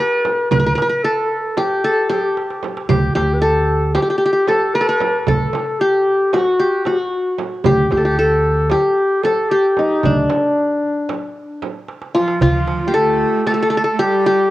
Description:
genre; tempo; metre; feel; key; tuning
Turkish makam ensemble; 227 BPM (eighths); 9/8; straight; unclear; A4 = 439 Hz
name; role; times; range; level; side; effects
qanun; melody; 0.0-14.5 s; D4 to B4-40c; -17 LUFS; left 1 dB; cassette tape
mellow clarinet; second line; 0.0-14.5 s; D4 to B4-32c; -20 LUFS; left 1 dB; none
darbuka; percussion; 0.3-14.1 s; none; -23 LUFS; right 3 dB; none
frame drum; percussion; 0.3-12.3 s; none; -26 LUFS; right 9 dB; none
upright bass; bass; 0.5-13.2 s; D2; -20 LUFS; equal; none
bright cello; second line; 12.2-14.5 s; F3 to Bb3; -23 LUFS; right 7 dB; none
room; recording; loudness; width
light reverb, small room ambience; home recording on cassette; -14 LUFS; side -16 dB against mid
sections
0.0-12.4 A section; 12.4-14.5 B section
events
drum fill 2.4-2.9, 11.9-12.4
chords
none

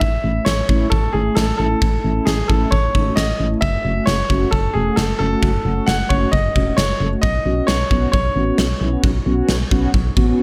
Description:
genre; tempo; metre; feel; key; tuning
synth-pop; 133 BPM; 4/4; straight; unclear; A4 = 440 Hz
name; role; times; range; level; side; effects
clear concert grand piano; melody; 0.0-10.3 s; G#4 to F#5; -24 LUFS; equal; tape echo
solid FM bass; bass; 0.0-10.3 s; E1 to B1; -23 LUFS; equal; none
gated 80s drum kit; drums; 0.0-10.3 s; kick drum, snare drum; -22 LUFS; equal; none
mellow synth brass; accompaniment; 0.2-10.4 s; A3 to A4; -25 LUFS; equal; chorus
room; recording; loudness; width
light reverb, small room ambience; none; -18 LUFS; mono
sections
0.0-10.4 A section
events
none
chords
0.0 A; 3.6 F#m; 7.2 Bsus2

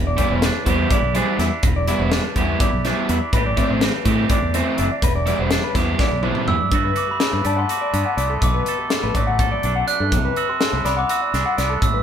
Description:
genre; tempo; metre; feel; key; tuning
math rock and midwest emo; 247 BPM (eighths); 7/8; straight; E minor; A4 = 438 Hz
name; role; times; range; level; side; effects
twangy electric guitar; accompaniment; 0.0-12.0 s; E2 to A4; -27 LUFS; right 6 dB; none
electric guitar through a small old amp; arpeggios; 0.0-12.0 s; G4 to F#5; -26 LUFS; left 3 dB; warbly pitch drift
fingered electric bass; bass; 0.0-12.0 s; E1 to A2; -23 LUFS; equal; none
crunchy overdriven guitar; riff; 0.2-6.6 s; E3 to E4; -23 LUFS; right 1 dB; none
crisp fusion drum kit; drums; 0.2-11.9 s; hi-hat, kick drum, snare drum, toms; -22 LUFS; equal; none
glockenspiel with soft plastic mallets; melody; 6.5-12.0 s; A5 to F#6; -23 LUFS; right 1 dB; none
room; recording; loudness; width
light reverb; band playing live in one room; -17 LUFS; side -8 dB against mid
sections
0.0-6.7 A section; 6.7-12.0 B section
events
drum fill 6.0-6.7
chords
0.0 Em7; 3.3 Am11; 5.0 Em7; 6.7 Gmaj9; 8.4 Bm7; 10.1 Cmaj9#11

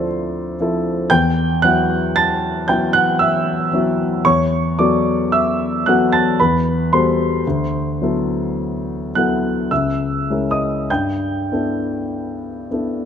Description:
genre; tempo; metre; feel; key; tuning
classical, impressionist solo piano; 49-58 BPM; 3/4; rubato; G major; A4 = 440 Hz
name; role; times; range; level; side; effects
warm grand piano; solo; 0.0-13.1 s; C#2 to A6; -16 LUFS; equal; none
room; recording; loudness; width
light reverb; close, detailed microphones; -16 LUFS; side -8 dB against mid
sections
0.0-13.1 A section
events
none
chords
0.0 Dm9; 1.1 Emadd9; 4.2 Bm7/E; 6.4 Gmaj9/E; 7.4 D13; 9.7 C#m6; 10.9 G69

